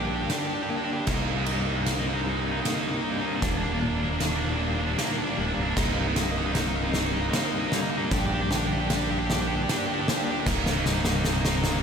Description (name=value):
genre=post-rock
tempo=77 BPM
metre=3/4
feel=straight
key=C minor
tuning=A4 = 440 Hz
part: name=clean electric guitar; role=arpeggios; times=0.0-11.8 s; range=C2 to D4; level=-32 LUFS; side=left 3 dB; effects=tremolo, tape echo
part: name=thick fuzz guitar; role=riff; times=0.0-11.8 s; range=Bb3 to G4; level=-28 LUFS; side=right 1 dB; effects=distortion
part: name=growling fingered electric bass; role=bass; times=0.0-11.8 s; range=C1 to C2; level=-30 LUFS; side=equal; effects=overdrive
part: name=oversized low-tuned drum kit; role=drums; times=0.3-11.8 s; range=crash cymbal, kick drum, ride cymbal, snare drum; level=-29 LUFS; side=equal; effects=none
room=light reverb, small room ambience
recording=none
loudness=-24 LUFS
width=side -6 dB against mid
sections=0.0-11.8 A section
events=build-up 0.0-11.8; drum fill 0.0-11.8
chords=0.0 Gm/Bb; 1.1 Cm7; 3.4 Ebmaj7; 5.8 Cm7; 8.1 Gm/Bb; 10.5 Cm7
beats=0.30 | 1.08 1.86 2.65 | 3.43 4.21 5.00 | 5.78 6.56 7.34 | 8.12 8.91 9.69 | 10.47 11.26